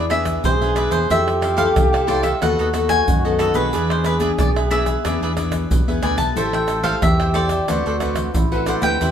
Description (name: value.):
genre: samba and choro.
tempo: 91 BPM.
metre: 4/4.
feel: straight.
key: unclear.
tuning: A4 = 440 Hz.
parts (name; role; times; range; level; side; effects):
cavaquinho; melody; 0.0-9.1 s; A4 to A5; -22 LUFS; equal; none.
warm trombone; second line; 0.0-9.1 s; E4 to A4; -24 LUFS; right 2 dB; none.
cavaquinho; accompaniment; 0.0-9.1 s; D4 to G5; -27 LUFS; right 2 dB; none.
nylon-string guitar; accompaniment; 0.0-9.1 s; A2 to C5; -24 LUFS; left 4 dB; none.
fingered electric bass; bass; 0.0-9.1 s; A1 to F#2; -24 LUFS; equal; none.
pandeiro, tamborim, tube shaker and surdo; percussion; 0.1-9.1 s; none; -23 LUFS; right 1 dB; none.
room: wet studio reverb, RT60 0.7 s.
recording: band playing live in one room.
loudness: -16 LUFS.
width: side -8 dB against mid.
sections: 0.0-9.1 A section.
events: none.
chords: 0.0 E7; 1.1 Fmaj7; 2.4 B7/D#; 3.7 E7; 6.4 Am7; 7.7 D13.